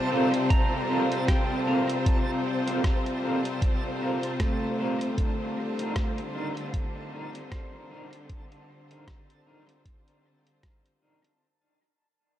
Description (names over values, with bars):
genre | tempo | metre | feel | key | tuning
ambient dub | 77 BPM | 4/4 | swing 57% on 16ths | unclear | A4 = 440 Hz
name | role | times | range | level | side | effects
clear symphonic string section | sustained chords | 0.0-11.4 s | C3 to C5 | -30 LUFS | left 2 dB | none
pedal steel guitar | arpeggios | 0.0-9.3 s | A3 to Bb5 | -35 LUFS | right 2 dB | tape echo
backwards swelling texture | texture | 0.0-11.4 s | A5 | -41 LUFS | right 4 dB | built-in reverb
clean electric guitar | stabs | 0.1-11.3 s | C4 to Bb4 | -30 LUFS | right 1 dB | tremolo, dub echo
lo-fi sampler-style drum kit | drums | 0.3-11.4 s | hi-hat, rim click | -39 LUFS | equal | overdrive, studio reverb, dub echo
electronic kick drum | drums | 0.5-10.8 s | none | -26 LUFS | equal | overdrive, studio reverb
room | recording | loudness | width
light reverb | none | -24 LUFS | side -12 dB against mid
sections
0.0-11.4 A section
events
fade-out 0.0-11.4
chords
0.0 Gm11; 5.2 Cm9